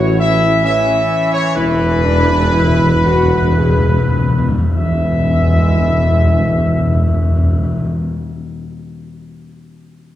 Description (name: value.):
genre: classical.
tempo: 52-68 BPM.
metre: 3/4.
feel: straight.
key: E major.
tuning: A4 = 440 Hz.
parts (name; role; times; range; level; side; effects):
dark trumpet section; melody; 0.0-7.9 s; B4 to E5; -18 LUFS; equal; none.
dark French horn section; sustained chords; 0.0-7.9 s; B3 to G#4; -21 LUFS; left 4 dB; none.
warm trombone section; sustained chords; 0.0-7.9 s; E3 to E4; -23 LUFS; right 1 dB; none.
mellow tuba; bass; 0.0-7.9 s; E1 to A1; -19 LUFS; right 2 dB; none.
timpani; percussion; 1.6-7.9 s; E2; -16 LUFS; left 1 dB; none.
room: wet scoring stage reverb, RT60 1.4 s.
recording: dark, warm production.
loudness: -12 LUFS.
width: side -12 dB against mid.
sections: 0.0-4.7 A section; 4.7-8.1 B section.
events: slowing down 0.0-4.7; timpani fill 1.6-4.7.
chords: 0.0 A; 1.6 E5; 4.7 E.